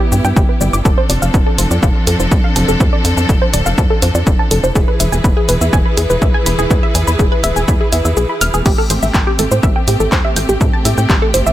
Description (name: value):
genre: melodic techno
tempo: 123 BPM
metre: 4/4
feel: straight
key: A minor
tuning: A4 = 442 Hz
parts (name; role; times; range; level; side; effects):
- warm studio string section; sustained chords; 0.0-11.5 s; E3 to B4; -20 LUFS; equal; sidechain pumping
- wide unison pluck; arpeggios; 0.0-11.5 s; G4 to F6; -18 LUFS; equal; sidechain pumping, ping-pong delay
- tight sequencer bass; bass; 0.1-11.5 s; D1 to A2; -16 LUFS; equal; sidechain pumping
- punchy analog drum machine; drums; 0.1-11.5 s; crash cymbal, handclaps, hi-hat, shaker; -20 LUFS; equal; none
- electronic kick drum; drums; 0.4-11.2 s; none; -14 LUFS; equal; none
room: light reverb, digital ambience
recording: none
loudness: -11 LUFS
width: side -13 dB against mid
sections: 0.0-11.5 A section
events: kick drops out 8.2-8.7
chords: 0.0 G; 0.9 F6; 4.8 E; 8.7 Am7